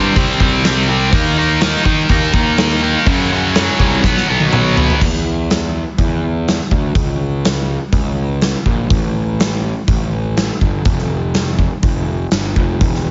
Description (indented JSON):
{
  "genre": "quiet-loud alternative rock",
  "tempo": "123 BPM",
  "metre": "4/4",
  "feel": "straight",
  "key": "E phrygian from 5.0 s",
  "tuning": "A4 = 439 Hz",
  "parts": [
    { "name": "heavy high-gain guitar", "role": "riff", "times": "0.0-5.0 s", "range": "F#2 to D#4", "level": "-17 LUFS", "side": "equal", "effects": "distortion" },
    { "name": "fuzz picked electric bass", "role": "bass", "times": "0.0-13.1 s", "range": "E1 to D#3", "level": "-20 LUFS", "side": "equal", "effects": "overdrive" },
    { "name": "huge arena drum kit", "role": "drums", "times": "0.2-13.0 s", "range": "crash cymbal, hi-hat, kick drum, snare drum, toms", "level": "-19 LUFS", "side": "equal", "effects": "none" }
  ],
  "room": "light reverb, studio ambience",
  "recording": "nothing above 7.6 kHz",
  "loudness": "-15 LUFS",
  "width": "mono",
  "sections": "0.0-5.0 A section; 5.0-13.1 B section",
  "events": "drum fill 4.0-5.0",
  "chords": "0.0 C5; 1.1 D#5; 3.1 F#5; 4.0 B5; 5.0 N.C.",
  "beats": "0.16 0.64 | 1.12 1.61 2.09 2.58 | 3.06 3.55 4.03 4.52 | 5.01 5.49 5.98 6.47 | 6.95 7.44 7.93 8.42 | 8.91 9.39 9.88 10.37 | 10.86 11.35 11.84 12.32 | 12.81"
}